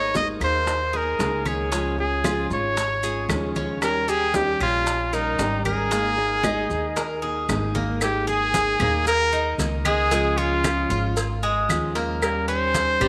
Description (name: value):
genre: latin, Cuban son and guajira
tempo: 114 BPM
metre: 4/4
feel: straight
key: unclear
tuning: A4 = 440 Hz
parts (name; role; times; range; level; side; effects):
- clear trumpet; melody; 0.0-13.1 s; Eb4 to Eb5; -26 LUFS; equal; none
- fingerpicked plugged-in steel-string acoustic guitar; accompaniment; 0.0-13.1 s; Db3 to Ab4; -32 LUFS; equal; none
- Cuban tres; arpeggios; 0.0-13.1 s; G3 to Db5; -31 LUFS; equal; none
- upright bass; bass; 0.0-13.1 s; Ab1 to Eb2; -32 LUFS; equal; none
- bongos and cowbell; percussion; 0.1-13.0 s; none; -35 LUFS; equal; none
- maracas; percussion; 0.1-13.1 s; none; -38 LUFS; equal; none
- congas; percussion; 0.2-13.1 s; none; -34 LUFS; equal; none
- claves; percussion; 0.4-13.1 s; none; -35 LUFS; equal; none
room: moderate echo chamber reverb, RT60 2.6 s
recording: none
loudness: -23 LUFS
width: mono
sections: 0.0-8.0 A section; 8.0-13.1 B section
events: none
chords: 0.0 Absus2; 1.7 Db; 3.8 Eb7; 5.9 Absus2; 10.1 Db; 12.2 Eb7